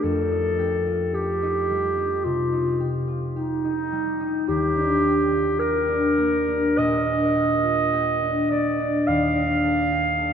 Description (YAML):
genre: classical, impressionist duo for clarinet and harp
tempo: 54 BPM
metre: 4/4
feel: rubato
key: unclear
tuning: A4 = 441 Hz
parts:
  - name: clear clarinet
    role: melody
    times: 0.0-10.3 s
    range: Eb4 to F5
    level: -22 LUFS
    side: right 1 dB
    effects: none
  - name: concert harp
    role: accompaniment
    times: 0.0-10.3 s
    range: Eb2 to A4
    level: -24 LUFS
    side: left 1 dB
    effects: none
room: wet cathedral reverb, RT60 5.6 s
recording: in a vast, echoing space, nothing above 7.8 kHz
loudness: -20 LUFS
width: side -7 dB against mid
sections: 0.0-10.3 A section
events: none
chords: 0.0 F9; 4.5 Ebmaj7; 9.1 F69/Eb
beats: | 0.03 1.15 2.24 3.35 | 4.48 5.60 6.79 7.94 | 9.08 10.20